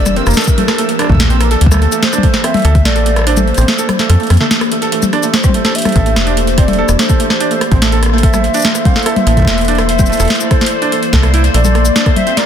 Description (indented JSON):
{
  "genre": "IDM",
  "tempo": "145 BPM",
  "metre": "4/4",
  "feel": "straight",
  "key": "A phrygian",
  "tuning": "A4 = 440 Hz",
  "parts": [
    { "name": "warbly nostalgic lead", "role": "melody", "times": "0.0-12.5 s", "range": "Bb4 to F5", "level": "-20 LUFS", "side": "equal", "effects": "chorus, ping-pong delay" },
    { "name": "warbly tape-like pad", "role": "sustained chords", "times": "0.0-12.5 s", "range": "E3 to D5", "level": "-19 LUFS", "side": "left 2 dB", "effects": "chorus, built-in reverb, phaser, vintage 12-bit sampler grit" },
    { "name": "felt-muted upright piano", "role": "arpeggios", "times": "0.0-12.4 s", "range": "A3 to A4", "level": "-18 LUFS", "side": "right 6 dB", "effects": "ping-pong delay" },
    { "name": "metallic FM bass", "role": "bass", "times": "0.0-11.9 s", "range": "E1 to F2", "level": "-12 LUFS", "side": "equal", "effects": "none" },
    { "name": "bubbling stepped-filter texture", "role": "texture", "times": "0.0-12.5 s", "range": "C5 to E6", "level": "-25 LUFS", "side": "left 2 dB", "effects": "chorus, built-in reverb" },
    { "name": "booming analog drum machine", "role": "drums", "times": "0.1-12.5 s", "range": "hi-hat, rim click, shaker, snare drum, toms", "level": "-15 LUFS", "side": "left 1 dB", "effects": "ping-pong delay" },
    { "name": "electronic kick drum", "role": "drums", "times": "0.5-2.8, 5.4-12.1 s", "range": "none", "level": "-12 LUFS", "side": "equal", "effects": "none" }
  ],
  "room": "light reverb",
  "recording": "dense, heavily limited modern master",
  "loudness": "-9 LUFS",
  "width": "side -9 dB against mid",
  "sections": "0.0-12.5 A section",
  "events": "kick drops out 3.3-4.9",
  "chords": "0.0 Bb6; 1.6 D7(no3); 4.9 Am7; 11.5 Bb6"
}